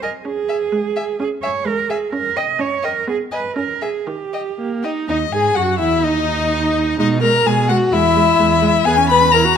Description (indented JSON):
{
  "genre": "quick classical-period movement for string quartet",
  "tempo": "127 BPM",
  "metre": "2/4",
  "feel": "rubato",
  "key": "G# minor",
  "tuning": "A4 = 441 Hz",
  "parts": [
    { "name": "rich violin", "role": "melody", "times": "0.0-9.6 s", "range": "D#5 to B5", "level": "-18 LUFS", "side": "left 8 dB", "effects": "none" },
    { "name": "warm violin", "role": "second line", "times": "0.0-9.4 s", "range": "D#4 to E5", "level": "-20 LUFS", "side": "left 1 dB", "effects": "none" },
    { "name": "clear viola", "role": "accompaniment", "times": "0.0-9.6 s", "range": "D#3 to G#4", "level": "-23 LUFS", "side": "right 3 dB", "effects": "none" },
    { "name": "warm cello", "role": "bass", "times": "0.0-9.6 s", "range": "D#2 to D#5", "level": "-20 LUFS", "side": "right 6 dB", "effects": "none" }
  ],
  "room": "moderate recital hall reverb, RT60 1.5 s",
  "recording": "none",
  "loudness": "-15 LUFS",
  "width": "side -8 dB against mid",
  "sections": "0.0-5.1 A section; 5.1-9.6 B section",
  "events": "none",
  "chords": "0.3 C#5; 2.1 D#7(no3)/C#; 3.1 G#m/B; 3.6 A#m7/C#; 4.1 D#; 5.1 G#5/D#; 6.0 N.C.; 7.0 G#m/B; 7.9 E; 8.9 C#m7/E"
}